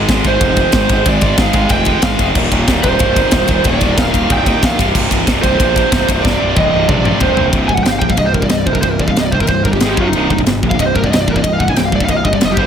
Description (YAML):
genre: heavy metal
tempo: 185 BPM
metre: 4/4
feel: straight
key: C minor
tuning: A4 = 440 Hz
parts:
  - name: high-gain distorted guitar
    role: riff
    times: 0.0-12.7 s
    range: C2 to Ab3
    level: -17 LUFS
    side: right 1 dB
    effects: distortion
  - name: fuzz picked electric bass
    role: bass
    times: 0.0-12.7 s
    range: C1 to Bb1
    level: -18 LUFS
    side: left 1 dB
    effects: overdrive
  - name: tight metal drum kit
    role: drums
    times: 0.1-12.7 s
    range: crash cymbal, kick drum, ride cymbal, snare drum, toms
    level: -16 LUFS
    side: left 1 dB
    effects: none
  - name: lead guitar through a small cranked amp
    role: melody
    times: 0.3-12.7 s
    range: Eb4 to Ab5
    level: -17 LUFS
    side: right 2 dB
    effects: overdrive, ping-pong delay
room: light reverb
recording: none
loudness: -11 LUFS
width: side -8 dB against mid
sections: 0.0-7.5 A section; 7.5-12.7 B section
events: drum fill 6.2-7.5; lead electric guitar solo 7.5-12.7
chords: 0.0 Ab; 2.4 Eb5; 4.8 C5; 9.8 Ab5; 10.0 F#5; 10.1 C5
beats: 0.09 0.41 0.74 | 1.06 1.39 1.71 2.04 | 2.36 2.69 3.01 3.33 | 3.66 3.98 4.30 4.63 | 4.95 5.28 5.60 5.92 | 6.25 6.57 6.89 7.22 | 7.54 7.87 8.19 8.52 | 8.84 9.17 9.49 9.82 | 10.14 10.47 10.79 11.12 | 11.44 11.77 12.09 12.42